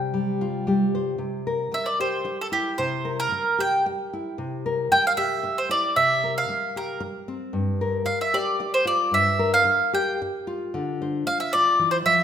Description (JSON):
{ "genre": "acoustic folk duo or small band", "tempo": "113 BPM", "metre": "3/4", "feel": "straight", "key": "unclear", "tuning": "A4 = 440 Hz", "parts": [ { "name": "bowl-back mandolin", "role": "melody", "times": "0.0-12.2 s", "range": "G4 to G5", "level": "-21 LUFS", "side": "right 1 dB", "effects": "none" }, { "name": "nylon-string guitar", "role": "accompaniment", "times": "0.0-12.2 s", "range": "G2 to C5", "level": "-26 LUFS", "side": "left 2 dB", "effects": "none" } ], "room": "moderate scoring stage reverb, RT60 1.6 s", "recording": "minimal, uncompressed stereo recording", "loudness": "-21 LUFS", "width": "side -9 dB against mid", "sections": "0.0-1.2 A section; 1.2-12.2 B section", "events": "mandolin solo 1.2-12.2", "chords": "0.0 Csus4; 1.2 C7; 7.6 Gm7; 10.7 Dm7" }